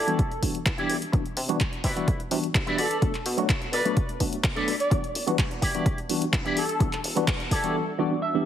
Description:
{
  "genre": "filtered disco house",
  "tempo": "127 BPM",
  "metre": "4/4",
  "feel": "straight",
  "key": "E minor",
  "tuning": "A4 = 440 Hz",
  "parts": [
    { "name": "analog synth brass", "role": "melody", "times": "0.0-7.8 s", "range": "A4 to D5", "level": "-31 LUFS", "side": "equal", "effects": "chorus, sidechain pumping, low-pass filter, ping-pong delay" },
    { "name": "electric guitar with an envelope filter", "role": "riff", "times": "0.0-8.4 s", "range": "E4 to E5", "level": "-30 LUFS", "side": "right 1 dB", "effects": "analog chorus, sidechain pumping, low-pass filter" },
    { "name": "plucky analog bass", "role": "bass", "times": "0.0-7.6 s", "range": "E1 to C3", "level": "-36 LUFS", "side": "equal", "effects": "sidechain pumping, high-pass filter, low-pass filter" },
    { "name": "tine electric piano", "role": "accompaniment", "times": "0.1-8.5 s", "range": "E3 to A4", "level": "-28 LUFS", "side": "equal", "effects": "medium stereo tremolo, phaser, sidechain pumping, low-pass filter" },
    { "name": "punchy analog drum machine", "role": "drums", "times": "0.1-7.7 s", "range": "handclaps, hi-hat", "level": "-30 LUFS", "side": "left 1 dB", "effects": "overdrive, sidechain pumping on hats" },
    { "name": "electronic kick drum", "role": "drums", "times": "0.2-7.6 s", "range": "none", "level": "-26 LUFS", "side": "equal", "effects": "overdrive" }
  ],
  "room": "moderate plate reverb, RT60 1.4 s",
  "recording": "heavily compressed radio sound, multiband compression",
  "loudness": "-23 LUFS",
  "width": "side -10 dB against mid",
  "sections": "0.0-8.5 A section",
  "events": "build-up 0.0-8.5; clean electric guitar fill 7.8-8.5",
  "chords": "0.0 Em7; 1.1 Cmaj9#11; 2.8 Bm7; 4.9 Em7"
}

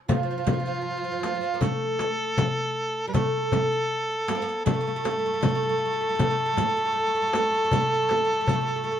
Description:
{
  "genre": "Arabic maqam ensemble",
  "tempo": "79 BPM",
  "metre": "4/4",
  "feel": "straight",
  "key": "unclear",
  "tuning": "A4 = 442 Hz",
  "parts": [
    { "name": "mellow harmonica", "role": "melody", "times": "0.1-9.0 s", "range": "F4 to Bb4+49c", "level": "-25 LUFS", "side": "equal", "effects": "none" },
    { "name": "oud", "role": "second line", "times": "0.1-9.0 s", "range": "F3 to C4", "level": "-30 LUFS", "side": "right 3 dB", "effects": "none" },
    { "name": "darbuka", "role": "percussion", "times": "0.1-8.7 s", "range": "none", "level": "-29 LUFS", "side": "left 3 dB", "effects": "none" },
    { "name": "frame drum", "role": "percussion", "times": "0.1-8.7 s", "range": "none", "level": "-29 LUFS", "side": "left 3 dB", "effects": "none" },
    { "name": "riq", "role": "percussion", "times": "0.1-8.7 s", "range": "none", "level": "-35 LUFS", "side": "right 6 dB", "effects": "none" }
  ],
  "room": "moderate studio reverb, RT60 0.6 s",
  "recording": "dark, warm production",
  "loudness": "-22 LUFS",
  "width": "side -10 dB against mid",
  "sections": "0.0-9.0 A section",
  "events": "none",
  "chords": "none"
}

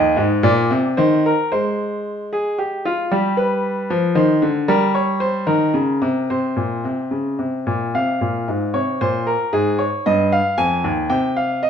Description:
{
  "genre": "classical, baroque-style two-part invention for grand piano",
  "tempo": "113 BPM",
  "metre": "3/4",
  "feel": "straight",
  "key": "C minor, F minor from 4.7 s",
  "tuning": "A4 = 440 Hz",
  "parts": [
    { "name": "clear baby grand piano", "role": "solo", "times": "0.0-11.7 s", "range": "Eb2 to Ab5", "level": "-16 LUFS", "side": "equal", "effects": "none" }
  ],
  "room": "wet stone room reverb, RT60 0.9 s",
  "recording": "dark, warm production",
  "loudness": "-17 LUFS",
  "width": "side -8 dB against mid",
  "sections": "0.0-1.5 A section; 1.5-7.9 B section; 7.9-11.7 A section",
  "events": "none",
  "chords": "0.0 Cm/Eb; 1.5 Ab; 2.6 Fmadd9/Ab; 3.1 G; 4.2 Cm/Eb; 4.7 Gdim; 6.3 Bbmadd9; 7.9 Fm; 9.0 Bbsus2; 9.5 Fm/Ab; 10.6 Fm; 11.1 C5"
}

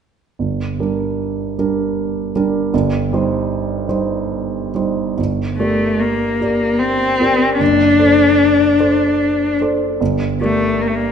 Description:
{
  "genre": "classical, romantic duo for cello and grand piano",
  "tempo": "75 BPM",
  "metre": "3/4",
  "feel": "uneven beats, rubato",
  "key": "G minor",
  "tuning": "A4 = 440 Hz",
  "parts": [
    { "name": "warm concert grand piano", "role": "accompaniment", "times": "0.4-11.1 s", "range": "F#1 to D5", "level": "-18 LUFS", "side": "right 3 dB", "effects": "none" },
    { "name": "rich cello", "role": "melody", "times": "5.6-11.1 s", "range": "A3 to D4", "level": "-14 LUFS", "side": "left 2 dB", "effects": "none" }
  ],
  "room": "moderate scoring stage reverb, RT60 1.7 s",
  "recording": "nothing above 10.5 kHz",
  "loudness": "-14 LUFS",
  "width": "side -7 dB against mid",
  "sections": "0.4-5.2 A section; 5.2-11.1 B section",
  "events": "none",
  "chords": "0.4 Gm; 2.7 Cm/G; 5.2 Gm; 7.6 D7/F#; 10.0 Gm"
}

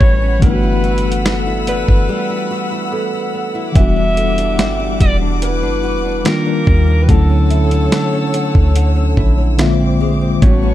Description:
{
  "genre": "contemporary R&B",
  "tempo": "72 BPM",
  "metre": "4/4",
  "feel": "straight",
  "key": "unclear",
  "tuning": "A4 = 439 Hz",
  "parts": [
    { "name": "breathy alto saxophone", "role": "melody", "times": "0.0-10.7 s", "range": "A4 to E5", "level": "-22 LUFS", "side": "left 2 dB", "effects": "ping-pong delay" },
    { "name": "mellow tine electric piano", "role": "accompaniment", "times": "0.0-10.7 s", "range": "D3 to E5", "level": "-19 LUFS", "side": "left 2 dB", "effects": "medium stereo tremolo" },
    { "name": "warm studio string section", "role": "sustained chords", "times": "0.0-10.7 s", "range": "G3 to E6", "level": "-26 LUFS", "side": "left 2 dB", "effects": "none" },
    { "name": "flamenco guitar", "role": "arpeggios", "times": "0.0-10.7 s", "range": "A2 to F#4", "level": "-23 LUFS", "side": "right 3 dB", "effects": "none" },
    { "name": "soft 808-style bass", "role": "bass", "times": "0.0-10.7 s", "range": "E1 to Eb2", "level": "-15 LUFS", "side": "equal", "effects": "none" },
    { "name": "dusty soul sampler-style drum kit", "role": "drums", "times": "0.0-10.6 s", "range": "hi-hat, kick drum, snare drum", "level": "-14 LUFS", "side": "equal", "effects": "none" },
    { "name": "celesta", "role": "texture", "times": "0.0-10.0 s", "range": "A4 to A5", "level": "-30 LUFS", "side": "right 6 dB", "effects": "ping-pong delay" }
  ],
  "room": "small room ambience",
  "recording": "dark, warm production",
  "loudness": "-12 LUFS",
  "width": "side -13 dB against mid",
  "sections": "0.0-10.7 A section",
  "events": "break 2.1-3.8; tine electric piano fill 9.2-10.4",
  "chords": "0.4 Gmaj13; 3.8 Em9; 6.3 Ebmaj9; 7.1 Dmaj9; 9.6 Bb9"
}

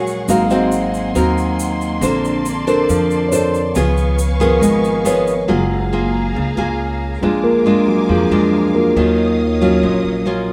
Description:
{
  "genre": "bossa nova",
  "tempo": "138 BPM",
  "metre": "4/4",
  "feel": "straight",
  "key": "F# major from 5.5 s",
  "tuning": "A4 = 440 Hz",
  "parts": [
    { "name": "mellow tine electric piano", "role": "accompaniment", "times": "0.0-10.5 s", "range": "D3 to F5", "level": "-20 LUFS", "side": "equal", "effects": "none" },
    { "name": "nylon-string guitar", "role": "accompaniment", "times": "0.0-10.5 s", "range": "Bb2 to C5", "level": "-20 LUFS", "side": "equal", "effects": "none" },
    { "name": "warm studio string section", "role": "sustained chords", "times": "0.0-10.5 s", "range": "Bb3 to D#6", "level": "-29 LUFS", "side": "equal", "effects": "none" },
    { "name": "upright bass", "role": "bass", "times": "0.0-10.5 s", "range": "F#1 to F2", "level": "-24 LUFS", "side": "equal", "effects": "none" },
    { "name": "tube shaker", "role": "percussion", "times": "0.1-5.5 s", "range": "none", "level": "-34 LUFS", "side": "equal", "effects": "none" }
  ],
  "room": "wet studio reverb, RT60 0.7 s",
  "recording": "heard from further back in the room",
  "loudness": "-16 LUFS",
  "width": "mono",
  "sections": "0.0-5.5 A section; 5.5-10.5 A section",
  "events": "tine electric piano solo 0.0-10.5",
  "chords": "0.3 Ab9; 2.0 Bbmaj9; 3.8 Db7; 5.5 F#maj9; 7.2 A#7; 9.0 D#m9"
}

